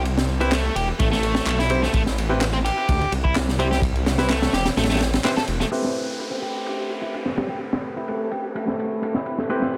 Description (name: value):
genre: breakbeat, breaks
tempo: 127 BPM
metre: 4/4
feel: straight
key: A minor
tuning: A4 = 440 Hz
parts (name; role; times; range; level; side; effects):
- detuned saw bass; bass; 0.0-5.6 s; E1 to D2; -26 LUFS; equal; none
- crunchy breakbeat drum kit; drums; 0.1-9.8 s; kick drum, ride cymbal, snare drum; -27 LUFS; equal; low-pass filter on kick, low-pass filter on cymbals, low-pass filter on snare, low-pass filter on room
- biting overdriven guitar; riff; 0.4-9.6 s; G3 to A4; -29 LUFS; equal; low-pass filter
- clear grand piano; stabs; 0.4-9.8 s; C4 to C5; -31 LUFS; equal; low-pass filter, digital delay
- electronic handclaps and tambourine; drums; 0.5-9.8 s; none; -35 LUFS; equal; none
- mellow tonewheel organ; sustained chords; 5.7-9.8 s; A3 to B4; -34 LUFS; equal; chorus vibrato, slow rotary speaker, sidechain pumping
- downlifter; sound effects; 5.7-9.5 s; none; -39 LUFS; equal; none
room: light reverb, small room ambience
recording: none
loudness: -23 LUFS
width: mono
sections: 0.0-5.7 A section; 5.7-9.8 B section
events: band accent 5.2; filter sweep on grand piano 5.7-9.8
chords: 0.0 Am9